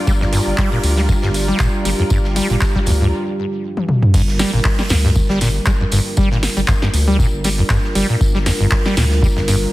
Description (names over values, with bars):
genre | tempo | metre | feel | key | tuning
acid house | 118 BPM | 4/4 | swing 55% on 16ths | G minor pentatonic | A4 = 439 Hz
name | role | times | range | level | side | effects
dark analog pad | sustained chords | 0.0-9.7 s | G3 to Bb4 | -23 LUFS | right 1 dB | chorus, sidechain pumping
rich studio string section | texture | 0.0-3.1 s | F4 to D5 | -28 LUFS | left 1 dB | sidechain pumping
deep acid bass | riff | 0.1-9.6 s | F2 to G3 | -19 LUFS | equal | overdrive, wide subtle chorus, ping-pong delay
round analog bass | bass | 0.1-9.7 s | G1 to D2 | -19 LUFS | equal | sidechain pumping
big rock drum kit | drums | 0.1-9.6 s | hi-hat, snare drum, tambourine | -30 LUFS | equal | high-pass filter on hats, high-pass filter on snare, high-pass filter on perc, high-pass filter on room
electronic kick drum | drums | 0.1-9.3 s | none | -17 LUFS | equal | none
electro analog drum machine | drums | 0.3-9.6 s | crash cymbal, handclaps, hi-hat, snare drum, toms | -21 LUFS | equal | none
room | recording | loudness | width
small room ambience | heavily compressed radio sound | -14 LUFS | side -17 dB against mid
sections
0.0-4.1 A section; 4.1-9.7 B section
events
filter sweep on acid bass 0.0-4.1; drum fill 3.8-4.1; drop 4.1-9.7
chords
0.0 Gm7